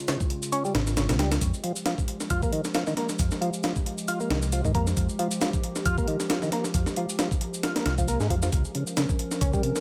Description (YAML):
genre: breakbeat, breaks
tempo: 135 BPM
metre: 4/4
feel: swing 55% on 16ths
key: F minor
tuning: A4 = 441 Hz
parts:
  - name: warbly tape-like pad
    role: sustained chords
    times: 0.0-9.8 s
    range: Db3 to Bb4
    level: -36 LUFS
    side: equal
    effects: chorus, built-in reverb, sidechain pumping
  - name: overdriven tonewheel organ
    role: riff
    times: 0.1-9.7 s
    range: C3 to F4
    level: -32 LUFS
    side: equal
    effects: chorus vibrato, slow rotary speaker, tube saturation, digital delay
  - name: breakbeat sampler-style drum kit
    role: drums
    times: 0.1-9.8 s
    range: hi-hat, kick drum, snare drum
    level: -30 LUFS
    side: equal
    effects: small room reverb
  - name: shaker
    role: drums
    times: 0.1-9.8 s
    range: none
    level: -39 LUFS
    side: equal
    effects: small room reverb
  - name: picked electric bass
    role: bass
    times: 0.7-9.5 s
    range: Ab1 to Ab2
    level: -29 LUFS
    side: equal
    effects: none
room: digital ambience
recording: none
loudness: -27 LUFS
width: mono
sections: 0.0-9.8 A section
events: none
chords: 0.0 Db; 1.4 Fmadd9; 8.5 Db6